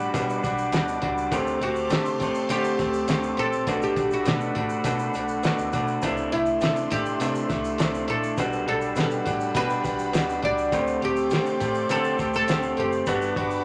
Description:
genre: indie pop, bedroom pop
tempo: 102 BPM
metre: 4/4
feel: straight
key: G major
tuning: A4 = 443 Hz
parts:
  - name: oud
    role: melody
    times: 0.0-13.6 s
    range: D4 to D5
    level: -30 LUFS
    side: equal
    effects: none
  - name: electric guitar through a small old amp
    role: accompaniment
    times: 0.0-13.6 s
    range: B2 to G4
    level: -28 LUFS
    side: equal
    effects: warbly pitch drift
  - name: phased analog pad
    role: sustained chords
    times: 0.0-13.6 s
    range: G3 to D6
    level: -37 LUFS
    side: equal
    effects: phaser, chorus
  - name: vintage muted picked electric bass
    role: bass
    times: 0.0-13.6 s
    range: F#1 to D3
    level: -38 LUFS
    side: equal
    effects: none
  - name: cloth-damped thuddy drum kit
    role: drums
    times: 0.1-13.5 s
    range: hi-hat, kick drum, snare drum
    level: -31 LUFS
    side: equal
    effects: none
  - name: egg shaker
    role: percussion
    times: 0.1-13.6 s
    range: none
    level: -49 LUFS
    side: equal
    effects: none
room: moderate large studio reverb, RT60 1.2 s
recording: none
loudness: -25 LUFS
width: mono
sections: 0.0-13.6 A section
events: none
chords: 0.0 Gmaj7; 1.3 D7sus4; 3.7 Bm7; 6.0 C69; 8.4 Gmaj7/B; 10.7 D7sus4; 13.1 Gmaj7

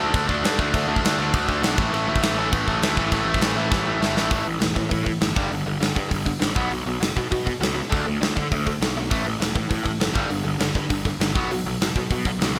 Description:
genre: punk rock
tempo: 201 BPM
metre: 4/4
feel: straight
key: unclear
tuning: A4 = 440 Hz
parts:
  - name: biting overdriven guitar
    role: riff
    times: 0.0-12.6 s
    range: G2 to D4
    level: -27 LUFS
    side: equal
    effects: none
  - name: fuzz picked electric bass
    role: bass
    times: 0.0-12.6 s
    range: E1 to D3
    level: -29 LUFS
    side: equal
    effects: overdrive
  - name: big rock drum kit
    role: drums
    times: 0.1-12.5 s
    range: crash cymbal, hi-hat, kick drum, snare drum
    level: -26 LUFS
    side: equal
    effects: none
room: little or no reverb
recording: none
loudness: -23 LUFS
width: mono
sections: 0.0-4.3 A section; 4.3-12.6 B section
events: drum fill 3.7-4.3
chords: 0.0 D5; 1.8 A5; 5.4 G5; 6.6 B5; 7.9 D5; 9.1 A5; 10.2 G5; 11.4 B5

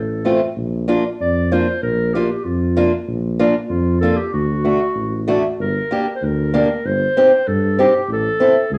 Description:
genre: alpine folk, alpine dance band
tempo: 96 BPM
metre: 2/4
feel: straight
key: Bb major, G minor from 5.6 s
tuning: A4 = 440 Hz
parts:
  - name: mellow clarinet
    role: melody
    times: 0.0-8.8 s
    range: F4 to D5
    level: -24 LUFS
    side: equal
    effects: cassette tape, plate reverb
  - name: dark tuba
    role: bass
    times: 0.0-8.8 s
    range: G1 to G2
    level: -23 LUFS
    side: equal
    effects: none
  - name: fingerpicked acoustic archtop guitar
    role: accompaniment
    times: 0.2-8.5 s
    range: A3 to A4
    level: -18 LUFS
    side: equal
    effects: cassette tape, plate reverb
room: wet studio reverb, RT60 0.5 s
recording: home recording on cassette, small room reverb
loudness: -18 LUFS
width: mono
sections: 0.0-5.6 A section; 5.6-8.8 B section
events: none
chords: 0.0 F; 0.6 Bb; 4.3 D; 5.6 Gm; 6.8 Cm/G; 8.1 Am

